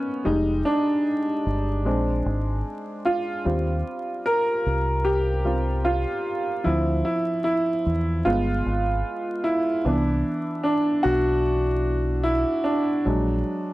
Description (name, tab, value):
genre	hip hop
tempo	75 BPM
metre	4/4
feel	swing 56% on 16ths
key	unclear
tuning	A4 = 440 Hz
part	warm upright piano	accompaniment	0.0-13.7 s	E3 to Bb4	-22 LUFS	equal	cassette tape, low-pass filter
part	deep dub fingered electric bass	bass	0.3-13.4 s	F1 to E2	-25 LUFS	equal	none
room	wet studio reverb, RT60 0.6 s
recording	vinyl crackle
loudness	-21 LUFS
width	side -18 dB against mid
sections	0.0-13.7 A section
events	upright piano solo 0.0-13.7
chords	0.2 Fm9; 1.8 Bb9; 3.4 Eb69 (rootless); 6.6 Dm9; 8.2 G7b9; 9.8 Cmaj9 (rootless); 13.0 Bbaug7